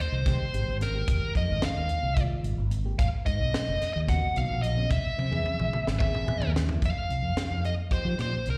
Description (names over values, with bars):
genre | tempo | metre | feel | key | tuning
electric jazz fusion | 220 BPM (eighths) | 7/8 | straight | unclear | A4 = 440 Hz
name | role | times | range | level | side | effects
dark smooth lead guitar | melody | 0.0-8.6 s | Bb4 to Gb5 | -34 LUFS | equal | overdrive, slapback echo, tape echo
mellow fretless electric bass | bass | 0.0-8.6 s | F1 to F3 | -31 LUFS | equal | analog chorus
reed electric piano | accompaniment | 0.3-8.4 s | Db3 to G#5 | -39 LUFS | equal | overdrive, slapback echo
tight funk drum kit | drums | 0.3-8.6 s | hi-hat, kick drum, snare drum, toms | -32 LUFS | equal | none
room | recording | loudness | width
little or no reverb | live gig heard through the venue's PA, recital hall reverb | -28 LUFS | mono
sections
0.0-6.8 A section; 6.8-8.6 B section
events
drum fill 5.2-6.8; reed electric piano fill 6.0-6.8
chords
0.0 Fm11; 3.0 Abm11; 4.9 C7alt; 6.8 F9sus4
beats
0.26 0.54 0.81 | 1.08 1.35 1.63 1.90 2.17 2.44 2.72 | 2.99 3.26 3.54 3.81 4.08 4.36 4.63 | 4.90 5.17 5.45 5.72 6.00 6.27 6.54 | 6.82 7.09 7.36 7.64 7.91 8.19 8.46